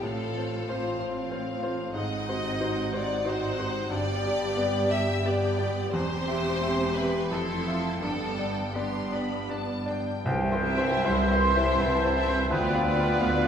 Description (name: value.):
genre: classical, romantic movement for piano and orchestra.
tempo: 73-96 BPM.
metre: 3/4.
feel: rubato.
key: C major.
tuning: A4 = 442 Hz.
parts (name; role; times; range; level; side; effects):
clear baby grand piano; melody; 0.0-13.5 s; C2 to F5; -30 LUFS; left 1 dB; none.
rich studio violin section; melody; 0.0-13.5 s; D5 to C6; -37 LUFS; left 4 dB; none.
rich studio violin section; second line; 0.0-13.5 s; E4 to E5; -33 LUFS; left 2 dB; none.
rich studio viola section; accompaniment; 0.0-13.5 s; B3 to G4; -34 LUFS; right 3 dB; none.
rich studio cello section; bass; 0.0-13.5 s; C2 to A2; -35 LUFS; right 1 dB; none.
rich studio double bass section; bass; 0.0-13.5 s; E1 to D2; -35 LUFS; right 2 dB; none.
clear oboe; second line; 10.3-13.5 s; B4 to C5; -34 LUFS; equal; none.
large flute ensemble; second line; 10.3-13.5 s; F5 to C6; -30 LUFS; right 1 dB; none.
warm bassoon; accompaniment; 10.3-13.5 s; E3 to F3; -34 LUFS; right 1 dB; none.
dark French horn section; sustained chords; 10.3-13.5 s; E3 to D4; -34 LUFS; left 3 dB; none.
bright trumpet; stabs; 10.3-13.5 s; B4 to C5; -32 LUFS; right 2 dB; none.
warm tuba; bass; 10.3-13.5 s; C2 to D2; -34 LUFS; right 3 dB; none.
tam-tam; percussion; 10.3-13.2 s; none; -40 LUFS; left 2 dB; none.
timpani; percussion; 10.3-11.4 s; C3; -37 LUFS; left 1 dB; none.
room: wet recital hall reverb, RT60 1.6 s.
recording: recorded in a church or concert hall.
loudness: -25 LUFS.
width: side -8 dB against mid.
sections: 0.0-10.3 A section; 10.3-13.5 B section.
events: band accent 10.3-11.1.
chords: 0.0 F/A; 1.9 Ab7; 3.9 G; 5.9 C/E; 7.3 Fmaj7; 8.0 G; 10.3 C; 12.5 Bdim/D.